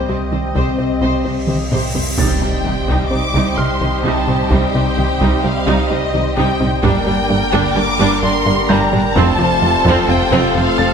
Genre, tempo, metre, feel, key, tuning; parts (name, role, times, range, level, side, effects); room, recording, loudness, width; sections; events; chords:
cinematic, hybrid orchestral and electronic film score; 129 BPM; 5/4; straight; C dorian; A4 = 440 Hz
warm symphonic violin section; melody; 0.0-10.9 s; Eb5 to D6; -21 LUFS; left 2 dB
warm symphonic violin section; second line; 0.0-10.9 s; G4 to C5; -24 LUFS; left 2 dB
warm symphonic viola section; accompaniment; 0.0-10.9 s; G3 to G4; -22 LUFS; right 2 dB
lush unison pad; sustained chords; 0.0-10.9 s; G3 to F5; -24 LUFS; equal; chorus
mellow French horn section; sustained chords; 0.0-10.9 s; Bb3 to F4; -25 LUFS; left 4 dB
pure sine sub bass; bass; 0.0-10.9 s; F1 to C2; -26 LUFS; right 1 dB
cymbal swell and impact; sound effects; 1.3-4.5 s; -25 LUFS; right 1 dB
dark concert grand piano; texture; 0.0-10.9 s; G5 to A6; -29 LUFS; left 1 dB
soft round pluck; arpeggios; 0.1-10.9 s; C3 to G4; -28 LUFS; left 2 dB
plucky analog bass; riff; 0.1-10.9 s; C2 to G3; -22 LUFS; left 2 dB
rich symphonic double bass section; bass; 0.1-10.9 s; F1 to C2; -24 LUFS; right 5 dB
warm symphonic cello section; bass; 0.1-10.9 s; F2 to C3; -24 LUFS; right 4 dB
taiko ensemble; drums; 0.6-10.3 s; -23 LUFS; right 1 dB
warm trombone section; sustained chords; 2.2-10.9 s; C3 to G3; -26 LUFS; right 5 dB
moderate scoring stage reverb, RT60 1.7 s; -13 LUFS; side -6 dB against mid
0.0-2.2 A section; 2.2-10.9 A section
cymbal swell 1.3-2.2; drum fill 1.5-2.2; impact 2.2-4.5
0.0 Cm; 6.8 Gm; 9.2 F